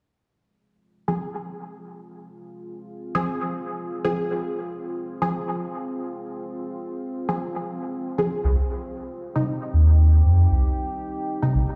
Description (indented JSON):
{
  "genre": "techno",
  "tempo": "116 BPM",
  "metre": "4/4",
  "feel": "swing 53% on 16ths",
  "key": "F minor",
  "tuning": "A4 = 440 Hz",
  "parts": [
    { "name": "deep dark ambient pad", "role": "sustained chords", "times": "1.5-11.8 s", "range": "C4 to Ab4", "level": "-35 LUFS", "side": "equal", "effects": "chorus, built-in reverb" },
    { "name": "filtered dub chord stab", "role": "stabs", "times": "1.1-11.6 s", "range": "C3 to Ab4", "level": "-29 LUFS", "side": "equal", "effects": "chorus, phaser, dub echo" },
    { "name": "soft dub sub bass", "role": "bass", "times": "8.4-11.7 s", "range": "Bb1 to F2", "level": "-17 LUFS", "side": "equal", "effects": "none" }
  ],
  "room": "moderate lush hall reverb, RT60 2.5 s",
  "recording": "played on a big sound system in a bare room, large studio reverb",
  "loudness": "-24 LUFS",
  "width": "mono",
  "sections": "0.2-11.8 A section",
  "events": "filter sweep on synth stab 0.2-11.8",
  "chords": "0.2 Fm; 8.4 Cm",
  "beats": "| 0.17 0.68 1.20 1.72 | 2.23 2.75 3.27 3.79 | 4.30 4.82 5.34 5.86 | 6.37 6.89 7.41 7.92 | 8.44 8.96 9.48 9.99 | 10.51 11.03 11.54"
}